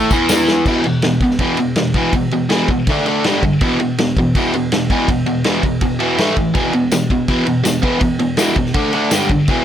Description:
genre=garage rock duo or trio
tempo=163 BPM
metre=4/4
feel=straight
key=unclear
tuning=A4 = 440 Hz
part: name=biting overdriven guitar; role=riff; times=0.0-9.6 s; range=E2 to D4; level=-15 LUFS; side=equal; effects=none
part: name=vintage drum kit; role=drums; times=0.1-9.6 s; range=crash cymbal, kick drum, ride cymbal, snare drum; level=-19 LUFS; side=equal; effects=none
part: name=tambourine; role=percussion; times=0.1-0.5, 6.9-9.2 s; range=none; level=-26 LUFS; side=left 5 dB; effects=none
room=light reverb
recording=none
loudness=-13 LUFS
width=side -10 dB against mid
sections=0.7-9.6 A section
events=drum fill 0.5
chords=0.0 E5; 2.9 D5; 3.2 G5; 3.6 E5; 6.2 A5; 6.5 E5; 8.8 D5; 9.1 G5

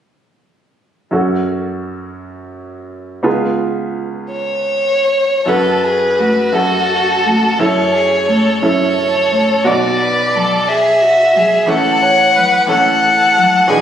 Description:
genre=classical, slow romantic movement for piano quartet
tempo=48-61 BPM (dotted quarters)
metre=6/8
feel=rubato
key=F# minor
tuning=A4 = 440 Hz
part: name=bright grand piano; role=accompaniment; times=1.1-13.8 s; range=A1 to D5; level=-18 LUFS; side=right 2 dB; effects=none
part: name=rich violin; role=melody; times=4.3-13.8 s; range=A4 to G#5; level=-12 LUFS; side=left 1 dB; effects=none
part: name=rich violin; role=second line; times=5.5-13.8 s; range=F#4 to C#5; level=-19 LUFS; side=right 1 dB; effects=none
part: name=warm cello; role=second line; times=6.2-13.8 s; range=E3 to A3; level=-20 LUFS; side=equal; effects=none
room=wet recital hall reverb, RT60 1.6 s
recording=recorded on a phone in the room, studio reverb, compression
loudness=-11 LUFS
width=side -9 dB against mid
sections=1.1-5.5 A section; 5.5-13.8 B section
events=none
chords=1.1 F#m; 3.3 C#7; 5.5 F#m; 7.6 A/F#; 9.7 Bm; 11.7 F#m/A

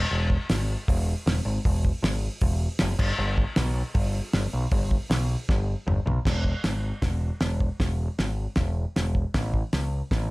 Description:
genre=garage rock duo or trio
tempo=156 BPM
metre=4/4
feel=straight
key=unclear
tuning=A4 = 439 Hz
part: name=growling picked electric bass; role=bass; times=0.0-10.3 s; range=E1 to C#2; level=-26 LUFS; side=equal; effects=overdrive
part: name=cloth-damped thuddy drum kit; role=drums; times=0.3-10.2 s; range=crash cymbal, hi-hat, kick drum, snare drum, toms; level=-26 LUFS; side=equal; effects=none
room=light reverb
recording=none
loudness=-23 LUFS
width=side -22 dB against mid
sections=0.0-6.3 A section; 6.3-10.3 B section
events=drum fill 5.5-6.3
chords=none

